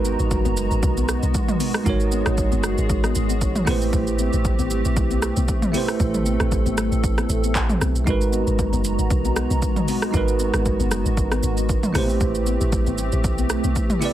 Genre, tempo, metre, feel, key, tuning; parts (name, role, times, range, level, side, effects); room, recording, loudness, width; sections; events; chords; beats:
amapiano; 116 BPM; 4/4; swing 55% on 16ths; A4 = 440 Hz
bell-like tine electric piano; accompaniment; 0.0-14.1 s; G#3 to D5; -26 LUFS; right 4 dB; analog chorus
hollow soft pad; sustained chords; 0.0-14.1 s; G#3 to A#5; -28 LUFS; left 1 dB; ensemble chorus, sidechain pumping
deep log drum bass; bass; 0.0-13.7 s; F#1 to B1; -23 LUFS; equal
deep house drum kit; drums; 0.1-14.1 s; handclaps, hi-hat, kick drum, rim click, shaker, toms; -23 LUFS; equal; overdrive
congas; percussion; 0.1-14.1 s; -32 LUFS; left 11 dB
light reverb; heavily compressed radio sound; -19 LUFS; side -12 dB against mid
0.0-14.1 A section
0.0 G#m9; 3.7 Am9; 8.1 G#m9; 11.9 Am9
0.31 0.83 1.34 | 1.86 2.38 2.90 3.41 | 3.93 4.45 4.97 5.48 | 6.00 6.52 7.04 7.55 | 8.07 8.59 9.10 9.62 | 10.14 10.65 11.17 11.69 | 12.21 12.72 13.24 13.76